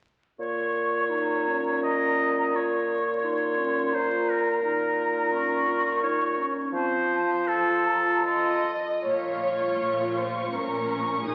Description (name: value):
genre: classical, slow romantic movement for symphony orchestra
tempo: 71-88 BPM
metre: 3/4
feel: rubato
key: Bb minor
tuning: A4 = 438 Hz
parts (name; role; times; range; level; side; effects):
- clear oboe; second line; 0.4-8.7 s; A4 to Eb5; -30 LUFS; equal; none
- small flute group; second line; 0.4-8.7 s; A5 to Db6; -33 LUFS; equal; none
- warm clarinet; second line; 0.4-8.7 s; C4 to F4; -37 LUFS; equal; none
- mellow bassoon; accompaniment; 0.4-8.7 s; Bb2 to F3; -30 LUFS; equal; none
- dark studio violin section; second line; 8.2-11.3 s; Ab4 to Eb5; -30 LUFS; equal; none
- bright studio cello section; bass; 9.0-11.3 s; Bb2; -39 LUFS; equal; none
- rich studio viola section; accompaniment; 9.1-11.3 s; Db4 to F4; -34 LUFS; equal; none
- dark studio double bass section; bass; 9.1-11.3 s; Bb1; -44 LUFS; equal; none
- warm studio violin section; melody; 9.4-11.3 s; Db6 to Eb6; -35 LUFS; equal; none
room: wet concert hall reverb, RT60 1.9 s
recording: very old 78 rpm record, vinyl crackle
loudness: -26 LUFS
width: mono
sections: 0.4-9.1 A section; 9.1-11.3 B section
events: none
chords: 0.4 Bbm; 6.7 F7; 9.1 Bbm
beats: | 0.40 1.11 1.83 | 2.54 3.24 3.93 | 4.63 5.33 6.03 | 6.74 7.47 8.24 | 9.06 9.81 10.54 | 11.26